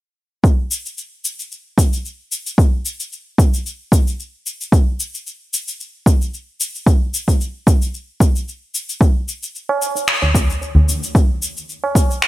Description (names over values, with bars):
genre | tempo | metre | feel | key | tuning
downtempo | 112 BPM | 4/4 | swing 54% on 16ths | none | none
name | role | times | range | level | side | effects
electronic kick drum | drums | 0.4-12.1 s | none | -13 LUFS | equal | none
electronic shaker and finger snaps | drums | 0.4-12.3 s | none | -22 LUFS | left 2 dB | gated reverb
tabla | percussion | 9.7-12.2 s | none | -17 LUFS | right 1 dB | none
room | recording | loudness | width
light reverb | bright 1980s-style digital production | -16 LUFS | side -16 dB against mid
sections
0.4-12.3 A section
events
none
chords
none